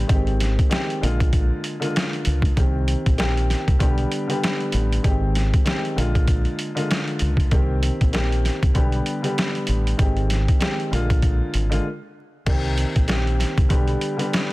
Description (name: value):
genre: hip hop, boom-bap hip-hop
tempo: 97 BPM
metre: 4/4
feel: swing 56% on 16ths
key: C minor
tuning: A4 = 442 Hz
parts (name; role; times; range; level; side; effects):
- dark upright piano; accompaniment; 0.0-14.5 s; D3 to G4; -25 LUFS; equal; cassette tape, high-pass filter, low-pass filter
- deep dub fingered electric bass; bass; 0.0-13.9 s; Ab1 to Db2; -22 LUFS; equal; none
- boom bap sampler-style drum kit; drums; 0.1-14.5 s; crash cymbal, hi-hat, kick drum, snare drum; -21 LUFS; equal; none
room: little or no reverb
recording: dense, heavily limited modern master, vinyl crackle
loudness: -19 LUFS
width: side -19 dB against mid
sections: 0.0-12.5 A section; 12.5-14.5 A section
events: break 11.8-12.5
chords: 0.1 Abmaj7; 1.0 Bb7; 2.6 Cm7; 3.8 G/B; 5.0 Abmaj7; 6.0 Bb7; 7.5 Cm7; 8.8 G/B; 10.0 Abmaj7; 10.9 Bb7; 12.5 Cm7; 13.7 G/B